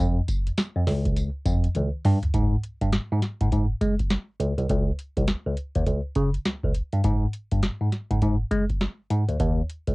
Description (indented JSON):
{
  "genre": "R&B, new jack swing",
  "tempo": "102 BPM",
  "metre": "4/4",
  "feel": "swing 62% on 16ths",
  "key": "unclear",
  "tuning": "A4 = 441 Hz",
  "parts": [
    { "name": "bell-like tine electric piano", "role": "bass", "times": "0.0-9.9 s", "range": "C2 to Ab3", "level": "-24 LUFS", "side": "equal", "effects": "medium stereo tremolo" },
    { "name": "booming analog drum machine", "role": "drums", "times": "0.3-9.9 s", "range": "hi-hat, kick drum, snare drum, tambourine, toms", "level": "-25 LUFS", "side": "equal", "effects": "cassette tape" }
  ],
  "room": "little or no reverb",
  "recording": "home recording on cassette",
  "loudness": "-22 LUFS",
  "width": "side -24 dB against mid",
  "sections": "0.0-2.3 A section; 2.3-9.9 B section",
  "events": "drum fill 1.8-2.3",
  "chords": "none",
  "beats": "0.57 1.16 1.75 | 2.34 2.93 3.52 4.10 | 4.69 5.28 5.87 6.46 | 7.05 7.63 8.22 8.81 | 9.40"
}